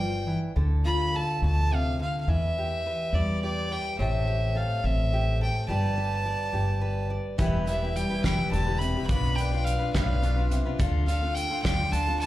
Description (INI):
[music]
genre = indie folk with a building arrangement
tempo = 70 BPM (dotted quarters)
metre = 6/8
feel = straight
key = unclear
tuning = A4 = 439 Hz
[part]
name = clear fiddle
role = melody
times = 0.0-12.3 s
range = D5 to B5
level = -30 LUFS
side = right 1 dB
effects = plate reverb, slapback echo
[part]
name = fingerpicked steel-string acoustic guitar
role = accompaniment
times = 0.0-10.8 s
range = A2 to E5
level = -31 LUFS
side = left 1 dB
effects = plate reverb, slapback echo
[part]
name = upright bass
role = bass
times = 0.0-12.3 s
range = E1 to E2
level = -27 LUFS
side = equal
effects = none
[part]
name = picked steel-string acoustic guitar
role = accompaniment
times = 7.4-12.3 s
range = D3 to B4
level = -32 LUFS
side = left 4 dB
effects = plate reverb, slapback echo
[part]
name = loose indie drum kit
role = drums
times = 7.4-12.3 s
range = hi-hat, kick drum, snare drum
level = -29 LUFS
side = equal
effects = none
[sound]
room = light reverb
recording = live gig heard through the venue's PA, club reverb, lossy compression artefacts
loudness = -24 LUFS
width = side -15 dB against mid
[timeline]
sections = 0.0-7.4 A section; 7.4-12.3 B section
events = none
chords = 0.0 G; 0.6 Dm; 2.3 Em; 4.0 Am7; 5.7 Gadd9; 7.4 Em; 9.1 Bdim; 10.8 Dm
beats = | 0.56 1.42 | 2.27 3.13 | 3.98 4.83 | 5.69 6.54 | 7.39 8.24 | 9.10 9.95 | 10.80 11.65